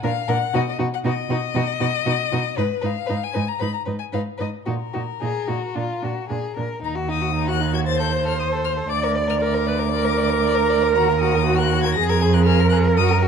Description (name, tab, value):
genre	quick classical-period movement for string quartet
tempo	117 BPM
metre	4/4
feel	rubato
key	Eb minor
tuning	A4 = 441 Hz
part	rich violin	melody	0.0-13.2 s	Bb4 to Bb6	-26 LUFS	left 12 dB	none
part	rich violin	second line	0.0-13.3 s	Eb4 to D5	-26 LUFS	left 6 dB	none
part	warm viola	accompaniment	0.0-13.3 s	D4 to D5	-24 LUFS	right 4 dB	none
part	rich cello	bass	0.0-13.3 s	D2 to B2	-22 LUFS	right 4 dB	none
room	moderate recital hall reverb, RT60 1.3 s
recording	dark, warm production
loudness	-19 LUFS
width	side -7 dB against mid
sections	0.0-6.8 A section; 6.8-13.3 B section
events	none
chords	0.0 Bb; 0.5 B; 2.6 Abm6; 4.7 Ebm/Bb; 5.8 Bb; 6.8 Ebm; 7.9 F9/Eb; 8.9 Bb/D; 11.0 Ebm; 12.0 Bb5/F